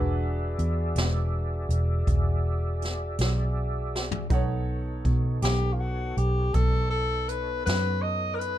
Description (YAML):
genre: slow blues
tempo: 54 BPM (dotted quarters)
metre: 12/8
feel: straight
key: unclear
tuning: A4 = 441 Hz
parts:
  - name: clear grand piano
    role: accompaniment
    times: 0.0-8.6 s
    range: D4 to F#5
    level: -37 LUFS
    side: right 2 dB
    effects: none
  - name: mellow tonewheel organ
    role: sustained chords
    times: 0.0-8.6 s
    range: B3 to E5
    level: -36 LUFS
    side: equal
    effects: chorus vibrato, slow rotary speaker
  - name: vintage muted fingered electric bass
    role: bass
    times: 0.0-8.6 s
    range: E1 to B2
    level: -26 LUFS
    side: equal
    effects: none
  - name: jazz brush drum kit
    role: drums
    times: 0.6-8.6 s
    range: hi-hat, kick drum, snare drum, toms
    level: -28 LUFS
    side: equal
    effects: none
  - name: warm tenor saxophone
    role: melody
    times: 5.4-8.6 s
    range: F4 to D#5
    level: -28 LUFS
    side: left 2 dB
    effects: plate reverb
room: light reverb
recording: dark, warm production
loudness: -24 LUFS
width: side -12 dB against mid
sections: 0.0-8.6 A section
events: drum fill 3.9-4.3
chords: 0.0 E9; 4.3 B9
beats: 0.96 2.08 3.20 | 4.31 5.43 6.55 7.66